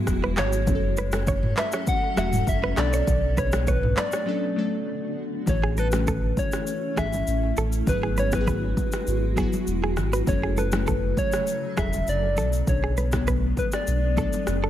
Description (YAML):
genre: afrobeats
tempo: 100 BPM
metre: 4/4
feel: straight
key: E mixolydian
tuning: A4 = 439 Hz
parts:
  - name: glassy digital keys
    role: accompaniment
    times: 0.0-14.7 s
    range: C#3 to A4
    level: -30 LUFS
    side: left 3 dB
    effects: chorus
  - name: granular cloud pad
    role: sustained chords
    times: 0.0-14.7 s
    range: C#3 to A4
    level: -33 LUFS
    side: right 1 dB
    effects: built-in reverb
  - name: sub bass with octave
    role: bass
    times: 0.1-14.7 s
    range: E1 to B1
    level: -26 LUFS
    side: equal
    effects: none
  - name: afro-pop drum kit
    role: drums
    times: 0.1-14.6 s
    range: handclaps, kick drum, rim click, shaker, toms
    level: -27 LUFS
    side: equal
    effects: none
  - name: direct-recorded clean electric guitar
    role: riff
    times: 0.2-14.7 s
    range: G#4 to E5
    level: -32 LUFS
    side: right 4 dB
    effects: none
  - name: congas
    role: percussion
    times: 0.2-14.5 s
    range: none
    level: -35 LUFS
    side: right 2 dB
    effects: none
  - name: soft struck synth lead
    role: melody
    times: 0.4-14.7 s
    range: B4 to F#5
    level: -29 LUFS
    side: left 1 dB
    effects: chorus
room: digital ambience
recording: none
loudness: -22 LUFS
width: side -12 dB against mid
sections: 0.0-5.5 A section; 5.5-14.7 B section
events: break 4.3-5.5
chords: 0.0 Eadd9; 0.7 F#m; 2.8 Bm7; 4.3 Dmaj7; 5.5 A; 7.9 Eadd9/G#; 10.3 F#m; 12.4 Bm7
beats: 0.07 | 0.67 1.27 1.87 2.47 | 3.07 3.67 4.27 4.87 | 5.47 6.07 6.67 7.27 | 7.87 8.47 9.07 9.67 | 10.27 10.87 11.47 12.07 | 12.67 13.27 13.87 14.47